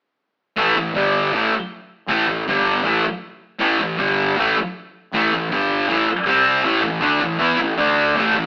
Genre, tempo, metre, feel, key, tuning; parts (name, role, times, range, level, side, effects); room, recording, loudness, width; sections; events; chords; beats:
rock; 158 BPM; 4/4; straight; A minor; A4 = 441 Hz
thick fuzz guitar; riff; 0.6-8.5 s; G2 to E4; -19 LUFS; equal; distortion
fuzz picked electric bass; bass; 0.6-8.5 s; G1 to E2; -29 LUFS; equal; overdrive
moderate stone room reverb, RT60 1.1 s; rough rehearsal-room recording, AM radio sound; -19 LUFS; mono
0.6-6.6 A section; 6.6-8.5 B section
0.6 A5; 1.0 G5; 1.3 A5; 2.5 G5; 2.9 A5; 4.0 G5; 4.4 A5; 5.5 G5; 5.9 A5; 6.3 C5; 6.6 A5; 7.8 D5
| 0.59 0.97 1.34 1.72 | 2.10 2.48 2.86 3.23 | 3.61 3.99 4.37 4.75 | 5.13 5.51 5.89 6.27 | 6.65 7.03 7.41 7.79 | 8.17